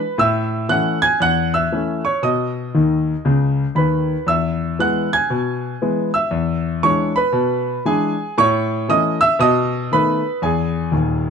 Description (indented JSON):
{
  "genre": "jazz, stride piano",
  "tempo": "117 BPM",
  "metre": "4/4",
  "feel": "swing 63% on 8ths",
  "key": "E major",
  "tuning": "A4 = 442 Hz",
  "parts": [
    { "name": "clear grand piano", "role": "solo", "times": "0.0-11.3 s", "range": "D#1 to G#6", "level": "-16 LUFS", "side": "equal", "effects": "none" }
  ],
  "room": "light reverb",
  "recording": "close, detailed microphones",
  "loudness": "-16 LUFS",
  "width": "side -6 dB against mid",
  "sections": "0.0-11.3 A section",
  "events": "grand piano fill 2.7-4.3, 10.9-11.3",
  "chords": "0.2 A; 2.2 B; 4.3 E; 6.3 E7; 8.4 A; 9.4 B7; 10.4 E"
}